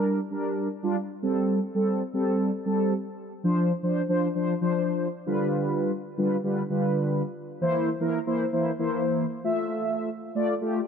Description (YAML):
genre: pop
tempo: 115 BPM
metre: 4/4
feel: straight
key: D minor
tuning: A4 = 440 Hz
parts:
  - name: mellow synth brass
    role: solo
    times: 0.0-10.8 s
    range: D3 to E5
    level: -24 LUFS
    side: equal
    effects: chorus
room: moderate lush hall reverb, RT60 2.9 s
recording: nothing above 10.3 kHz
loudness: -24 LUFS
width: side -7 dB against mid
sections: 0.0-3.1 A section; 3.1-10.9 B section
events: build-up 3.1-10.9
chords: 0.0 Gm; 1.0 Am7; 3.1 Dm7; 5.1 G7/D; 7.2 C7/E; 9.3 Fmaj7